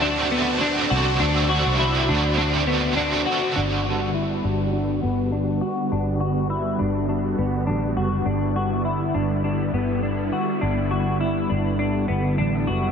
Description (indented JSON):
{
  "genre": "dream pop",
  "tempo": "102 BPM",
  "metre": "4/4",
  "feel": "straight",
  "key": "G major",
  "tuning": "A4 = 442 Hz",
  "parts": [
    { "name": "cranked stack guitar", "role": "accompaniment", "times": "0.0-4.1 s", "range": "D3 to F#4", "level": "-25 LUFS", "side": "right 4 dB", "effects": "overdrive, tremolo, ensemble chorus" },
    { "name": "string machine, violas", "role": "sustained chords", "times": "0.0-12.9 s", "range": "D3 to B5", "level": "-25 LUFS", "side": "right 1 dB", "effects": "ensemble chorus, low-pass filter" },
    { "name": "clean electric guitar", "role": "arpeggios", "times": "0.0-12.9 s", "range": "B3 to F#4", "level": "-25 LUFS", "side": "left 3 dB", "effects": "analog chorus, low-pass filter, ping-pong delay" },
    { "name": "vintage muted fingered electric bass", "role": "bass", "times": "0.0-12.9 s", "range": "F#1 to D2", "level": "-26 LUFS", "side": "equal", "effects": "none" }
  ],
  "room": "wet huge ambient reverb, RT60 4.7 s",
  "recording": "none",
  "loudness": "-20 LUFS",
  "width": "side -7 dB against mid",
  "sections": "0.0-3.6 A section; 3.6-12.9 B section",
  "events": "filter sweep 3.6-12.9",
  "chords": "0.0 D7; 3.6 Gmaj7"
}